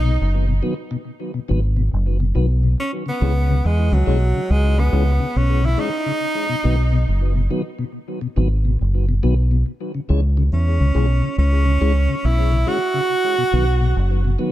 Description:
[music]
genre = roots reggae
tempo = 70 BPM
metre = 4/4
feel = swing 65% on 16ths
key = C# minor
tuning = A4 = 440 Hz
[part]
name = clear tenor saxophone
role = melody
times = 0.0-14.4 s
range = F#3 to F#4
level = -22 LUFS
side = right 2 dB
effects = tape echo
[part]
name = mellow tonewheel organ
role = accompaniment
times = 0.0-14.5 s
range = B2 to C#4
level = -26 LUFS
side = left 3 dB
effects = slow rotary speaker, analog delay
[part]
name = deep dub fingered electric bass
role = bass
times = 0.0-14.4 s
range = F#1 to E2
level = -16 LUFS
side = equal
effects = none
[sound]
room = little or no reverb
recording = echo-heavy mix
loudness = -16 LUFS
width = side -14 dB against mid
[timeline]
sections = 0.0-14.5 A section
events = none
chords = 0.0 B; 2.8 C#m; 6.2 B; 9.7 C#m; 13.1 B

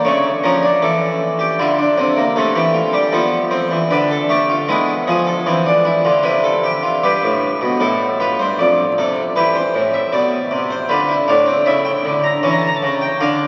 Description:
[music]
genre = classical, baroque-style 3-part fugue for harpsichord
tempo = 78 BPM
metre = 3/4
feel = straight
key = unclear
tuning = A4 = 440 Hz
[part]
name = harpsichord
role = solo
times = 0.0-13.5 s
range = F2 to Bb5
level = -16 LUFS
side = equal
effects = none
[sound]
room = wet cathedral reverb, RT60 5.4 s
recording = very old 78 rpm record, vinyl crackle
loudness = -16 LUFS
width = mono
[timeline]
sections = 0.0-7.0 A section; 7.0-13.5 B section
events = none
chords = 0.1 A7/C#; 1.6 Dm; 2.4 Am/C; 3.9 Bdim/D; 4.7 E7; 6.2 Am/C; 7.0 Em/G; 8.6 Dm/F; 9.4 C; 10.9 Bdim/D; 11.7 A7/C#

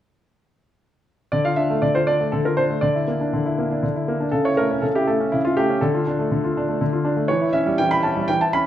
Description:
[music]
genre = classical-period piano sonatina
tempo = 121 BPM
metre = 3/4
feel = rubato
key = D minor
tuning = A4 = 440 Hz
[part]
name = clear grand piano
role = solo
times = 1.3-8.7 s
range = C#3 to B5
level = -18 LUFS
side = equal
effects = none
[sound]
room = moderate recital hall reverb, RT60 1.4 s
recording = none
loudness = -18 LUFS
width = side -11 dB against mid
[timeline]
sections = 1.3-8.7 A section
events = none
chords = 1.3 Dm; 2.8 Dsus2; 4.3 A/C#; 5.8 Dm; 7.3 C#dim/E

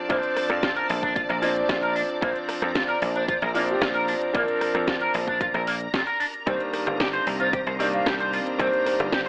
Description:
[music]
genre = nu-disco, nu disco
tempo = 113 BPM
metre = 4/4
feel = straight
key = unclear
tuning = A4 = 440 Hz
[part]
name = bright grand piano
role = accompaniment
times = 0.0-9.3 s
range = Eb3 to D4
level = -28 LUFS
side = equal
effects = none
[part]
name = string machine, full ensemble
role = sustained chords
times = 0.0-9.3 s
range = C4 to Eb6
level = -33 LUFS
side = equal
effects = ensemble chorus, sidechain pumping
[part]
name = mellow hollow concert flute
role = melody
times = 0.1-9.0 s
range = G4 to F5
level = -29 LUFS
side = equal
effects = analog delay
[part]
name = electric guitar with an envelope filter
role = riff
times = 0.1-9.3 s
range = Bb3 to C5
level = -26 LUFS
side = equal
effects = lush chorus
[part]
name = dry thumbed slap bass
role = bass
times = 0.1-9.3 s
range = G1 to F2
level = -29 LUFS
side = equal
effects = none
[part]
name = electronic kick drum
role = drums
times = 0.1-9.2 s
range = none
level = -30 LUFS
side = equal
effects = none
[part]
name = house drum kit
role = drums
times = 0.1-9.3 s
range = hi-hat, rim click, snare drum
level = -29 LUFS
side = equal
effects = none
[sound]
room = light reverb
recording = AM radio sound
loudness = -22 LUFS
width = side -37 dB against mid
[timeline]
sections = 0.0-9.3 A section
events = none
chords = 0.0 Bbmaj7; 6.5 Cm7

